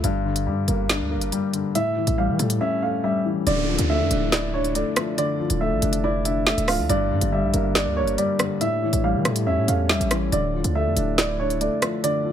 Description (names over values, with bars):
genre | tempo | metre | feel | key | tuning
hip hop, drill | 140 BPM | 4/4 | half-time | D harmonic minor | A4 = 440 Hz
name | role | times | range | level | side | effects
dark baby grand piano | accompaniment | 0.0-12.3 s | G2 to E4 | -24 LUFS | left 5 dB | none
hard-hitting 808-style bass | bass | 0.0-11.7 s | D1 to E3 | -25 LUFS | right 1 dB | none
drill drum kit | drums | 0.0-12.1 s | hi-hat, rim click, snare drum | -24 LUFS | right 1 dB | none
dark upright piano | melody | 1.8-12.3 s | C#5 to F5 | -26 LUFS | right 4 dB | none
glass harmonica | sustained chords | 3.5-12.3 s | A3 to D5 | -32 LUFS | right 4 dB | none
downlifter | sound effects | 3.5-6.9 s | none | -31 LUFS | right 1 dB | none
room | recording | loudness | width
studio ambience | none | -20 LUFS | side -9 dB against mid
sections
0.0-3.5 A section; 3.5-12.3 B section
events
break 0.0-1.8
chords
0.0 Gm; 1.8 A7; 3.5 Dmadd9; 6.9 Gm; 8.6 A7; 10.3 Dmadd9